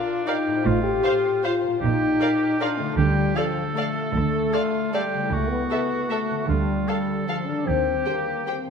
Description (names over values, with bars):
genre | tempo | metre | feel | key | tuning
classical | 154 BPM | 3/4 | uneven beats, rubato | unclear | A4 = 440 Hz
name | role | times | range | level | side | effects
warm oboe | second line | 0.0-8.6 s | D4 to A4 | -29 LUFS | right 3 dB | none
mellow French horn section | sustained chords | 0.0-8.7 s | F3 to G4 | -24 LUFS | left 2 dB | none
concert harp | arpeggios | 0.0-8.7 s | A2 to F5 | -31 LUFS | left 8 dB | none
warm studio violin section | melody | 0.3-8.5 s | E5 to G5 | -35 LUFS | left 1 dB | none
dark studio violin section | second line | 0.3-8.6 s | A4 to D5 | -35 LUFS | left 3 dB | none
warm studio viola section | accompaniment | 0.3-8.5 s | G4 to C5 | -33 LUFS | right 2 dB | none
warm studio cello section | bass | 0.7-8.0 s | A2 to Eb3 | -28 LUFS | right 6 dB | none
warm studio double bass section | bass | 0.7-8.0 s | A1 to Eb2 | -28 LUFS | right 4 dB | none
room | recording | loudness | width
wet scoring stage reverb, RT60 1.9 s | none | -21 LUFS | side -6 dB against mid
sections
0.0-8.7 A section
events
none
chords
0.0 Bb; 0.6 F/A; 1.8 Bb; 3.0 Dm; 5.3 A/C#; 6.5 Dm; 7.7 Cm/Eb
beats
0.27 | 0.65 1.03 1.43 | 1.81 2.19 2.60 | 2.97 3.35 3.76 | 4.14 4.52 4.93 | 5.31 5.70 6.10 | 6.49 6.87 7.28 | 7.67 8.06 8.46